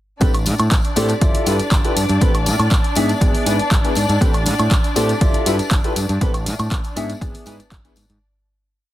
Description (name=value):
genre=filtered disco house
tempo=120 BPM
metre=4/4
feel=straight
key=unclear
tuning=A4 = 437 Hz
part: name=clear concert grand piano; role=accompaniment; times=0.2-7.9 s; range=B3 to E5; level=-22 LUFS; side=left 1 dB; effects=phaser, vintage 12-bit sampler grit, sidechain pumping
part: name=muted symphonic violin section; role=sustained chords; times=0.2-8.2 s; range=D4 to D5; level=-25 LUFS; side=left 1 dB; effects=vintage 12-bit sampler grit, sidechain pumping
part: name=growling fingered electric bass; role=bass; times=0.2-8.2 s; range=G1 to A2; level=-21 LUFS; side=equal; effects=overdrive, sidechain pumping
part: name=electronic kick drum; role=drums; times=0.2-7.8 s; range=none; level=-18 LUFS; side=equal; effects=none
part: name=punchy analog drum machine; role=drums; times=0.2-8.2 s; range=handclaps, hi-hat, woodblock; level=-24 LUFS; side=right 1 dB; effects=sidechain pumping on hats, sidechain pumping on perc
part: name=tambourine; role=percussion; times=0.2-8.2 s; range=none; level=-32 LUFS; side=left 4 dB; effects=sidechain pumping on perc
room=small room ambience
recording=heavily compressed radio sound, multiband compression, faint mains hum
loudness=-15 LUFS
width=side -14 dB against mid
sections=0.2-8.2 drop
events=drop 0.2-8.2; fade-out 5.5-8.2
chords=0.2 N.C.; 1.2 G13; 2.2 Asus4; 3.0 E7/G#; 4.2 N.C.; 5.2 G13; 6.2 Asus4; 7.0 E7/G#